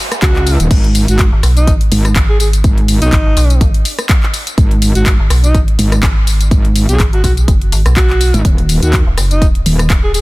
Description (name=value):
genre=bass house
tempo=124 BPM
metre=4/4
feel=swing 55% on 16ths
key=G# minor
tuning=A4 = 440 Hz
part: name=noise sweep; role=sound effects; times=0.0-0.7 s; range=none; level=-25 LUFS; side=right 3 dB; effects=none
part: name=house drum kit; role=drums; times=0.1-10.2 s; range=crash cymbal, handclaps, hi-hat, rim click, tambourine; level=-19 LUFS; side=left 2 dB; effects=none
part: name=warm alto saxophone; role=melody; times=0.2-10.2 s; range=D#4 to G#4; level=-20 LUFS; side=right 1 dB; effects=dub echo
part: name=metallic wobble bass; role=bass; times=0.2-9.9 s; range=D#1 to D#2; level=-12 LUFS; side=equal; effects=chorus, tube saturation, sidechain pumping
part: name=electronic kick drum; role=drums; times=0.2-10.0 s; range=none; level=-12 LUFS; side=equal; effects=none
part: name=metallic FM bass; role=bass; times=1.3-10.2 s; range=D#1 to B1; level=-12 LUFS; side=equal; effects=tube saturation, sidechain pumping
room=digital ambience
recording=dense, heavily limited modern master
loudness=-9 LUFS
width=side -21 dB against mid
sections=0.0-10.2 A section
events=noise sweep 0.0-0.7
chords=0.0 D#m; 0.7 G#m; 8.4 D#m